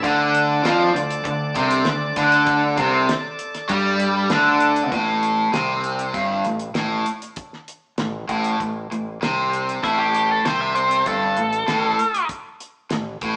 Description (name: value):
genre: classic rock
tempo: 98 BPM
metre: 4/4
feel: straight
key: unclear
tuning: A4 = 440 Hz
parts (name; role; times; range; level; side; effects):
- bright tonewheel organ; sustained chords; 0.0-4.9 s; D4 to D5; -29 LUFS; equal; overdrive, slow rotary speaker
- cranked stack guitar; riff; 0.0-13.4 s; G2 to G3; -24 LUFS; equal; overdrive, spring reverb
- overdriven semi-hollow guitar; riff; 0.0-4.9 s; C3 to G3; -22 LUFS; equal; none
- growling fingered electric bass; bass; 0.0-13.4 s; G1 to G2; -32 LUFS; equal; overdrive
- damped 70s drum kit; drums; 0.0-13.4 s; hi-hat, kick drum, snare drum; -31 LUFS; equal; none
- biting lead guitar; second line; 9.8-12.3 s; E4 to E5; -23 LUFS; equal; overdrive
room: wet stone room reverb, RT60 1.1 s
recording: band playing live in one room, small speaker sound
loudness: -20 LUFS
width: mono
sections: 0.0-4.9 A section; 4.9-13.4 B section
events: none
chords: 0.0 D5; 4.9 Gsus24